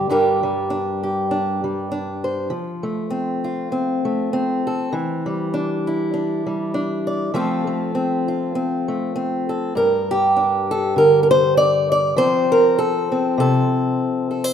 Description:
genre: folk, solo fingerstyle acoustic guitar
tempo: 99 BPM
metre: 4/4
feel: swing 55% on 8ths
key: G dorian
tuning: A4 = 437 Hz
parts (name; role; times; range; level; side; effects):
- fingerpicked acoustic archtop guitar; solo; 0.0-14.5 s; G2 to D5; -18 LUFS; equal; none
room: moderate concert hall reverb, RT60 2.1 s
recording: minimal, uncompressed stereo recording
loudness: -18 LUFS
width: side -8 dB against mid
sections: 0.1-9.8 A section; 9.8-14.5 B section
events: none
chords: 0.1 Gm; 2.5 F; 4.9 Cadd9/E; 7.3 F; 9.8 Gm; 12.2 F

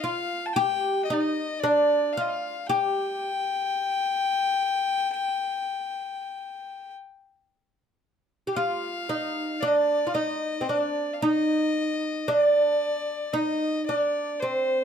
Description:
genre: Turkish makam ensemble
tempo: 113 BPM (eighths)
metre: 10/8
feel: straight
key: unclear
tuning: A4 = 440 Hz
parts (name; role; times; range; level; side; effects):
- oud; melody; 0.0-14.8 s; C4 to G4; -24 LUFS; right 1 dB; none
- rich fiddle; second line; 0.0-14.8 s; C5 to A5; -29 LUFS; left 5 dB; none
room: wet small room reverb, RT60 0.5 s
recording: none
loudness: -23 LUFS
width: side -8 dB against mid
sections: 0.0-8.0 A section; 8.0-14.8 B section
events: none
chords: none

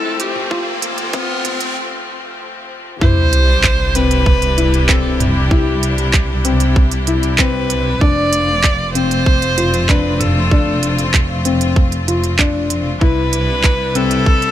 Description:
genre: piano and strings electronica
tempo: 96 BPM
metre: 4/4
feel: straight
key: C major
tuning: A4 = 440 Hz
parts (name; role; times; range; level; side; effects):
- rich viola; melody; 0.0-14.5 s; F4 to D5; -21 LUFS; right 1 dB; none
- clear studio string section; sustained chords; 0.0-14.5 s; C3 to B4; -24 LUFS; left 2 dB; sidechain pumping
- felt-muted upright piano; riff; 0.0-14.4 s; C4 to F4; -21 LUFS; left 4 dB; digital delay
- dark studio double bass section; bass; 0.0-14.5 s; F1 to C2; -18 LUFS; right 1 dB; sidechain pumping, high-pass filter
- riser and sub drop; sound effects; 0.0-5.5 s; none; -20 LUFS; right 1 dB; none
- organic electronic drum kit; drums; 0.2-14.5 s; handclaps, hi-hat, toms; -19 LUFS; right 2 dB; overdrive
- electronic kick drum; drums; 0.5-14.4 s; none; -14 LUFS; right 1 dB; overdrive
room: studio reverb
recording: high-pass filter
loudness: -13 LUFS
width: side -12 dB against mid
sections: 0.0-3.0 A section; 3.0-14.5 B section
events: build-up 0.0-3.0; riser 0.0-1.8; break 1.8-3.0; drop 3.0-14.5; impact 3.0-5.5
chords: 0.0 F; 3.0 Cmaj7; 8.0 F; 13.0 Cmaj7

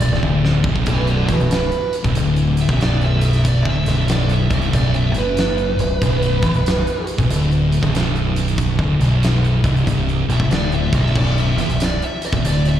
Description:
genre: stoner and doom metal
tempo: 93 BPM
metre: 4/4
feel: swing 64% on 8ths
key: B minor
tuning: A4 = 440 Hz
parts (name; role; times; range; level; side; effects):
- fuzz lead guitar; melody; 0.0-12.8 s; F#4 to E5; -24 LUFS; right 3 dB; distortion, slapback echo, tape echo
- thick fuzz guitar; riff; 0.0-12.8 s; B1 to F#2; -21 LUFS; left 6 dB; distortion
- thick fuzz guitar; riff; 0.0-12.8 s; B1 to F#2; -20 LUFS; right 4 dB; distortion
- growling fingered electric bass; bass; 0.0-12.8 s; B0 to F#1; -22 LUFS; equal; overdrive
- big rock drum kit; drums; 0.0-12.8 s; crash cymbal, hi-hat, kick drum, snare drum; -23 LUFS; equal; none
room: small room ambience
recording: live gig heard through the venue's PA, recital hall reverb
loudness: -15 LUFS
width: side -11 dB against mid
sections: 0.9-12.8 A section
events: drum fill 0.2-0.9; lead electric guitar solo 0.9-12.8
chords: 0.0 Bm

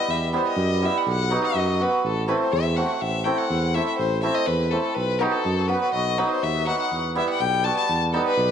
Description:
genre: klezmer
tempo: 123 BPM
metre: 2/4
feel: straight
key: A dorian sharp4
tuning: A4 = 441 Hz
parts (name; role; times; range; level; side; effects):
- rich violin; melody; 0.0-8.5 s; G4 to A5; -25 LUFS; left 6 dB; none
- hammered dulcimer; accompaniment; 0.0-8.5 s; F#3 to F#4; -24 LUFS; right 3 dB; none
- dark tuba; bass; 0.1-8.5 s; A1 to F#2; -26 LUFS; right 1 dB; none
room: wet echo chamber reverb, RT60 1.6 s, small room ambience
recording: nothing above 10.3 kHz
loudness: -20 LUFS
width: side -8 dB against mid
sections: 0.0-3.0 A section; 3.0-8.5 A section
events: none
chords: 0.0 Em; 1.1 B; 2.0 Am; 5.0 B; 6.9 Em

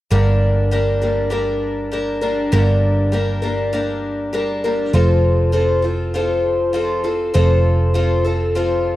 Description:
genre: rock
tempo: 100 BPM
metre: 4/4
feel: straight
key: G minor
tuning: A4 = 438 Hz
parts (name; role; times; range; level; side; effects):
- picked twelve-string acoustic guitar; accompaniment; 0.1-9.0 s; G2 to Bb4; -18 LUFS; left 1 dB; none
- hollow-body short-scale picked electric bass; bass; 0.1-9.0 s; F1 to G1; -18 LUFS; right 1 dB; none
room: little or no reverb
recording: dry, close 1970s-style studio recording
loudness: -15 LUFS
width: side -15 dB against mid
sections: 0.1-9.0 A section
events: none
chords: 0.1 Gm; 4.9 F

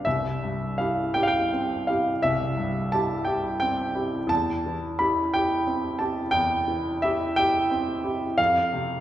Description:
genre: classical, romantic nocturne for solo piano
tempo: 53-62 BPM (dotted quarters)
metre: 12/8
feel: rubato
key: unclear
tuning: A4 = 440 Hz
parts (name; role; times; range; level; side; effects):
- clear grand piano; solo; 0.0-9.0 s; C2 to B5; -22 LUFS; equal; none
room: wet recital hall reverb, RT60 1.8 s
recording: heard from further back in the room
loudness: -22 LUFS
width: side -12 dB against mid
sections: 0.0-9.0 A section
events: none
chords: 0.1 C; 4.3 C/E; 8.4 Dm7/F (rootless)

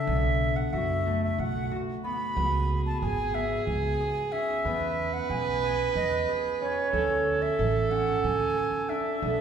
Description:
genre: contemporary instrumental, chamber music in an uneven meter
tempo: 183 BPM (eighths)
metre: 7/8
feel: straight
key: unclear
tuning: A4 = 440 Hz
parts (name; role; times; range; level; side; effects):
- bright baroque flute; melody; 0.0-9.4 s; C#5 to B5; -30 LUFS; equal; none
- concert harp; arpeggios; 0.0-9.4 s; C#3 to A4; -34 LUFS; left 2 dB; none
- upright bass; bass; 0.1-9.4 s; G#1 to F#2; -31 LUFS; right 2 dB; none
- warm viola; second line; 2.4-9.4 s; G#4 to B4; -29 LUFS; right 4 dB; none
room: wet recital hall reverb, RT60 1.7 s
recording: heard from further back in the room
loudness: -25 LUFS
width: side -8 dB against mid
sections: 0.0-9.4 A section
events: none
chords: 0.1 B5; 2.4 C#5; 4.7 E; 6.9 D5

